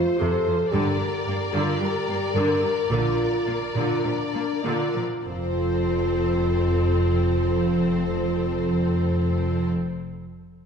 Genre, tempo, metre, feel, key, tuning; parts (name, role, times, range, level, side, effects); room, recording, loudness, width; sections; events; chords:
cinematic; 97-114 BPM; 4/4; straight; F major; A4 = 440 Hz
warm symphonic violin section; melody; 0.0-9.7 s; C5 to D5; -33 LUFS; equal
warm symphonic violin section; second line; 0.0-9.7 s; A4 to C5; -32 LUFS; left 4 dB
dark French horn section; sustained chords; 0.0-9.7 s; D4 to Bb4; -26 LUFS; left 1 dB
rich symphonic cello section; bass; 0.0-9.7 s; F2 to Bb2; -27 LUFS; right 1 dB
rich symphonic viola section; accompaniment; 0.2-9.7 s; C3 to C4; -30 LUFS; equal
dark symphonic double bass section; bass; 0.7-9.7 s; F1 to Bb1; -28 LUFS; right 2 dB
wet scoring stage reverb, RT60 1.8 s; heard from further back in the room; -21 LUFS; side -6 dB against mid
0.0-5.3 A section; 5.3-10.2 B section
slowing down 0.0-5.3
0.0 F; 0.7 Gm; 2.9 Bb; 5.3 F